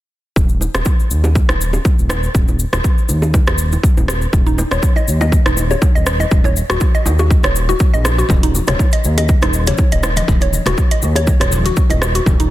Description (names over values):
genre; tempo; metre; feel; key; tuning
afro house; 121 BPM; 4/4; swing 55% on 16ths; Eb minor; A4 = 440 Hz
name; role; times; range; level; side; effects
smooth gliding synth bass; bass; 0.4-12.5 s; Eb1 to Eb2; -17 LUFS; equal; sidechain pumping
electronic kick drum; drums; 0.4-12.4 s; none; -14 LUFS; equal; overdrive
cabasa; percussion; 0.4-12.5 s; none; -27 LUFS; left 5 dB; none
bongos; percussion; 0.6-12.4 s; none; -26 LUFS; right 2 dB; none
house drum kit; drums; 0.7-12.5 s; hi-hat, rim click; -22 LUFS; right 1 dB; overdrive
mallet-like synth pluck; arpeggios; 4.5-12.5 s; Eb4 to Eb5; -21 LUFS; left 1 dB; chorus, sidechain pumping, tape echo
congas; percussion; 8.3-12.4 s; none; -24 LUFS; left 2 dB; none
room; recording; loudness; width
little or no reverb; dense, heavily limited modern master; -12 LUFS; side -15 dB against mid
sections
0.4-12.5 A section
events
none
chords
none